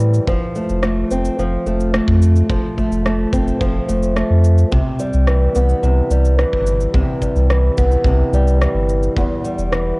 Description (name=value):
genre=folktronica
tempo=108 BPM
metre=4/4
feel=straight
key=F lydian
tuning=A4 = 439 Hz
part: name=fingerpicked old ladder-braced acoustic guitar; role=arpeggios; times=0.0-10.0 s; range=E2 to C4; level=-18 LUFS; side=equal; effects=vintage 12-bit sampler grit, cassette tape
part: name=warm sub bass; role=bass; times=0.0-9.9 s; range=E1 to A2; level=-15 LUFS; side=equal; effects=none
part: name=electronic shaker and rim click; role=drums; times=0.0-9.8 s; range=none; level=-26 LUFS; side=equal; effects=overdrive, cassette tape
part: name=kick drum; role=drums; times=0.3-9.3 s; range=none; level=-22 LUFS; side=equal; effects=cassette tape
room=light reverb, small room reverb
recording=home recording on cassette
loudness=-14 LUFS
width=side -28 dB against mid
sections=0.0-10.0 A section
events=none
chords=0.3 F; 4.7 Cmaj7; 9.2 Em